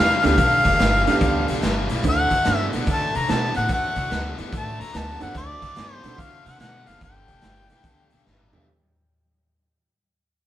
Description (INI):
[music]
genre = electric blues shuffle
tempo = 145 BPM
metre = 4/4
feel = swing 65% on 8ths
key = G major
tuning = A4 = 440 Hz
[part]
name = warm harmonica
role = melody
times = 0.0-8.2 s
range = D5 to Bb5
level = -23 LUFS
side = left 1 dB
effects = overdrive, analog delay
[part]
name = overdriven electric guitar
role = riff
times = 0.0-8.7 s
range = G2 to B3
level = -29 LUFS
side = left 3 dB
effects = none
[part]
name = upright bass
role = bass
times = 0.0-8.7 s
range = F1 to D3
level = -27 LUFS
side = equal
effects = none
[part]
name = bright upright piano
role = accompaniment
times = 0.2-8.7 s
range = A3 to G4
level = -26 LUFS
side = right 5 dB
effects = none
[part]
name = raw garage drum kit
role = drums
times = 0.2-8.6 s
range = hi-hat, kick drum, snare drum, toms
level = -25 LUFS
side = right 1 dB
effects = none
[sound]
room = moderate stone room reverb, RT60 1.0 s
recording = band playing live in one room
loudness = -18 LUFS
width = side -12 dB against mid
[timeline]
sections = 0.0-8.7 A section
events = fade-out 0.0-8.7; drum fill 8.3-8.7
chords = 0.0 G9; 2.0 D9; 7.0 G7